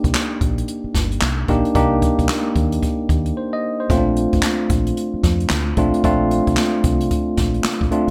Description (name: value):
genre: R&B, new jack swing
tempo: 112 BPM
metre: 4/4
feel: swing 62% on 16ths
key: C dorian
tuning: A4 = 440 Hz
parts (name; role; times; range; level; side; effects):
- tine electric piano; accompaniment; 0.0-8.1 s; A3 to Eb5; -22 LUFS; equal; none
- deep dub fingered electric bass; bass; 0.0-8.1 s; G1 to F2; -24 LUFS; equal; none
- jazz brush drum kit; drums; 0.0-8.1 s; handclaps, hi-hat, kick drum, snare drum; -23 LUFS; equal; none
room: light reverb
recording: none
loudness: -19 LUFS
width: mono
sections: 0.0-8.1 A section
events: break 3.4-3.9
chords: 0.0 Cm7; 3.9 Bbmaj9